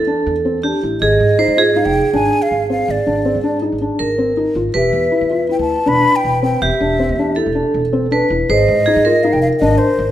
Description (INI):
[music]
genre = contemporary instrumental, chamber music in an uneven meter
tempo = 160 BPM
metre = 5/4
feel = straight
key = unclear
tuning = A4 = 440 Hz
[part]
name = vibraphone with hard mallets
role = second line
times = 0.0-10.1 s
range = G4 to C5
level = -17 LUFS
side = right 2 dB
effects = none
[part]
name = upright bass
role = bass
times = 0.0-10.1 s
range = E1 to Ab2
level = -22 LUFS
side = right 2 dB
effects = none
[part]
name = felt-muted upright piano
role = arpeggios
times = 0.1-9.9 s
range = C4 to Ab4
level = -19 LUFS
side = left 2 dB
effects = none
[part]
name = mellow hollow jazz flute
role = melody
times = 1.0-10.1 s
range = C5 to B5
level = -18 LUFS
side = left 1 dB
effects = none
[sound]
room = moderate recital hall reverb, RT60 1.7 s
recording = none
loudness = -13 LUFS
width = side -12 dB against mid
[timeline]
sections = 0.0-10.1 A section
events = none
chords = 0.0 Em; 1.0 Ab; 4.8 Em; 8.5 Ab